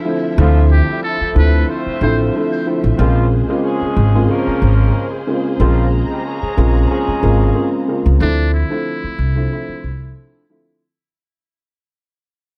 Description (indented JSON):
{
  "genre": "hip hop",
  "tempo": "92 BPM",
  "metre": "4/4",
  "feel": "swing 54% on 16ths",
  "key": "unclear",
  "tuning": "A4 = 439 Hz",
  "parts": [
    { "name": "dark upright piano", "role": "accompaniment", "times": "0.0-10.8 s", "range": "Db3 to F4", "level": "-21 LUFS", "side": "equal", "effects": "high-pass filter, low-pass filter" },
    { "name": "warm studio string section", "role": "sustained chords", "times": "0.0-8.2 s", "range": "F3 to Bb5", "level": "-31 LUFS", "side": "equal", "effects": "high-pass filter, low-pass filter" },
    { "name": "warm horn section", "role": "stabs", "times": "0.4-7.7 s", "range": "C3 to C5", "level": "-27 LUFS", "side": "equal", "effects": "high-pass filter, low-pass filter, tape echo" },
    { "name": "upright bass", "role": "bass", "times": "0.4-10.1 s", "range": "Ab1 to D2", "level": "-16 LUFS", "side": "equal", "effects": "none" },
    { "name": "trumpet with metal mute", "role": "melody", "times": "0.7-2.2, 8.2-10.3 s", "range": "D4 to C5", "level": "-27 LUFS", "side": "equal", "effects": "high-pass filter, low-pass filter, tape echo" }
  ],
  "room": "little or no reverb",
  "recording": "dark, warm production",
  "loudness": "-16 LUFS",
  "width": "mono",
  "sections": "0.0-8.2 A section; 8.2-10.8 B section",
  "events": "fade-out 8.2-10.8",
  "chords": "0.0 Dm9; 3.0 Bbm9; 8.2 Dm9",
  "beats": "| 0.38 1.03 1.69 2.34 | 2.99 3.64 4.29 4.95 | 5.60 6.25 6.90 7.55 | 8.21 8.86 9.51 10.16"
}